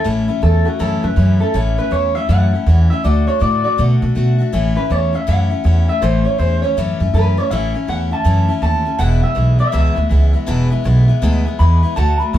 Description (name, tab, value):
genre	rockabilly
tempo	161 BPM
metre	4/4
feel	swing 63% on 8ths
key	A major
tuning	A4 = 440 Hz
part	electric guitar through a small old amp	melody	0.0-12.4 s	F#4 to B5	-20 LUFS	right 1 dB	none
part	picked steel-string acoustic guitar	accompaniment	0.0-12.4 s	E2 to F#4	-20 LUFS	left 4 dB	none
part	upright bass	bass	0.1-12.4 s	E1 to B2	-14 LUFS	equal	none
room	moderate studio reverb, RT60 0.6 s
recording	band playing live in one room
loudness	-13 LUFS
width	side -12 dB against mid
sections	0.0-12.4 A section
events	clean electric guitar solo 0.0-12.4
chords	0.0 A; 3.0 D; 4.5 A; 9.0 E